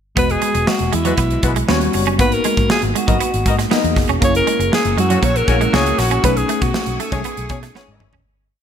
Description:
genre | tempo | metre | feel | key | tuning
polished 1980s jazz-funk pop | 119 BPM | 4/4 | straight | unclear | A4 = 440 Hz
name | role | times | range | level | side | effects
breathy alto saxophone | melody | 0.2-8.0 s | E4 to C#5 | -20 LUFS | equal | none
tine electric piano | accompaniment | 0.2-8.3 s | G3 to D#5 | -22 LUFS | left 2 dB | overdrive, analog chorus
semi-hollow electric guitar | riff | 0.2-8.2 s | F#3 to C#4 | -24 LUFS | right 9 dB | ensemble chorus
vintage muted fingered electric bass | bass | 0.2-8.2 s | E1 to B2 | -21 LUFS | equal | none
modern studio drum kit | drums | 0.2-8.2 s | hi-hat, kick drum, snare drum, toms | -20 LUFS | equal | gated reverb
mellow horn section | second line | 1.1-8.1 s | G3 to D#5 | -24 LUFS | left 6 dB | ping-pong delay
soft string machine | sustained chords | 4.2-8.2 s | A3 to E6 | -29 LUFS | equal | ensemble chorus
room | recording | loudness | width
light reverb, small room ambience | bright 1980s-style digital production, faint mains hum | -14 LUFS | side -8 dB against mid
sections
0.2-8.3 pre-chorus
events
fade-out 6.2-8.3; drum fill 7.8-8.3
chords
0.2 Emaj9; 1.7 D#7alt; 2.2 G#m9; 4.2 F#7; 6.2 B13

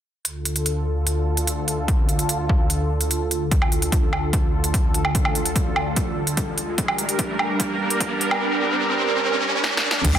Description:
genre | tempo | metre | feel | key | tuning
heavy wobble dubstep | 147 BPM | 4/4 | half-time | D minor | A4 = 440 Hz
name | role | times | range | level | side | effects
lush unison pad | sustained chords | 0.2-10.2 s | D2 to D5 | -23 LUFS | equal | chorus, phaser, sidechain pumping
big-room dance drum kit | drums | 0.2-10.2 s | crash cymbal, hi-hat, snare drum, woodblock | -24 LUFS | right 1 dB | overdrive
electronic kick drum | drums | 1.9-10.1 s | none | -22 LUFS | equal | overdrive
riser and impact | sound effects | 5.7-10.2 s | none | -27 LUFS | right 1 dB | none
wobble bass | bass | 10.0-10.2 s | F1 to D2 | -18 LUFS | equal | chorus, overdrive
room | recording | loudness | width
light reverb | dense, heavily limited modern master, high-pass filter | -19 LUFS | side -10 dB against mid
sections
0.2-3.5 A section; 3.5-10.0 B section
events
break 2.7-3.5; build-up 3.5-10.0; filter sweep 3.5-10.0; riser 5.7-10.0; drum fill 6.8-8.4, 9.6-10.0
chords
0.2 Dm; 6.8 Gm

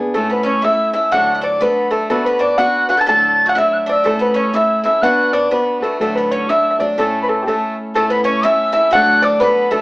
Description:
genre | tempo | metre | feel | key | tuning
celtic folk, Celtic polka | 123 BPM | 2/4 | swing 62% on 8ths | A major | A4 = 437 Hz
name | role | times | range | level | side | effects
fingerpicked plugged-in swing-style acoustic guitar | accompaniment | 0.0-9.8 s | D2 to B4 | -21 LUFS | equal | none
felt-muted upright piano | melody | 0.1-9.8 s | G4 to A5 | -16 LUFS | equal | none
Irish bouzouki | second line | 0.1-9.8 s | A3 to A4 | -26 LUFS | right 1 dB | none
breathy mellow mid whistle | second line | 0.1-9.8 s | A5 to A6 | -18 LUFS | equal | none
room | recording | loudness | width
wet small room ambience, RT60 0.5 s | heard from further back in the room, small speaker sound | -13 LUFS | side -24 dB against mid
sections
0.2-8.0 A section; 8.0-9.8 A section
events
none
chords
0.2 A; 1.1 D; 2.1 Bm; 3.1 D; 4.1 A; 5.0 Bm; 6.0 D; 7.0 A; 8.9 D

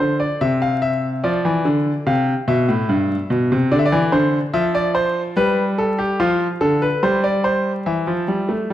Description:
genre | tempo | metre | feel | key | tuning
classical, baroque-style two-part invention for grand piano | 72 BPM | 4/4 | straight | unclear | A4 = 440 Hz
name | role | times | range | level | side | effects
clear concert grand piano | solo | 0.0-8.7 s | G2 to F5 | -16 LUFS | equal | none
room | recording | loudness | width
wet recital hall reverb, RT60 1.8 s | vinyl crackle | -16 LUFS | side -12 dB against mid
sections
0.0-8.7 A section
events
none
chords
0.0 Fmaj7(no3); 1.2 Bdim (rootless); 2.9 Em7/G; 4.5 F; 6.2 Dm/F; 7.0 G5; 7.9 C/E (rootless)

